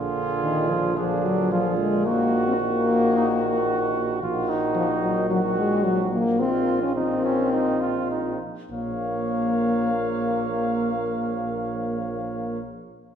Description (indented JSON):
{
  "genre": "classical, brass quintet",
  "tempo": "98-115 BPM",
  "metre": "4/4",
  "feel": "rubato",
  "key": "Bb minor",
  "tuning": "A4 = 441 Hz",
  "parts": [
    { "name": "mellow trumpet", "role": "melody", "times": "0.0-12.6 s", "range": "F4 to F5", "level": "-32 LUFS", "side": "left 7 dB", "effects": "none" },
    { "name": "warm flugelhorn", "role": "second line", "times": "0.0-12.6 s", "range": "Db4 to Db5", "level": "-28 LUFS", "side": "right 5 dB", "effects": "none" },
    { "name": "clear euphonium", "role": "accompaniment", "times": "0.0-12.6 s", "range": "D3 to Bb3", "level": "-31 LUFS", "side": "right 3 dB", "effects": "none" },
    { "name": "warm tuba", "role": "bass", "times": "0.0-12.6 s", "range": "Bb1", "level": "-29 LUFS", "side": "right 3 dB", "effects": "none" },
    { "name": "clear French horn", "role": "accompaniment", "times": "0.4-12.6 s", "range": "Eb3 to Db4", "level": "-24 LUFS", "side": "left 2 dB", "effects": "none" }
  ],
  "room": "wet recital hall reverb, RT60 1.7 s",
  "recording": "heard from further back in the room",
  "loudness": "-21 LUFS",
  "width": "side -8 dB against mid",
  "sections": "0.0-8.7 A section; 8.7-13.2 B section",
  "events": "slowing down 3.2-8.7",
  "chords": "0.0 Bb7; 2.1 Ebm/Bb; 6.4 F5/Bb; 8.7 Bbm"
}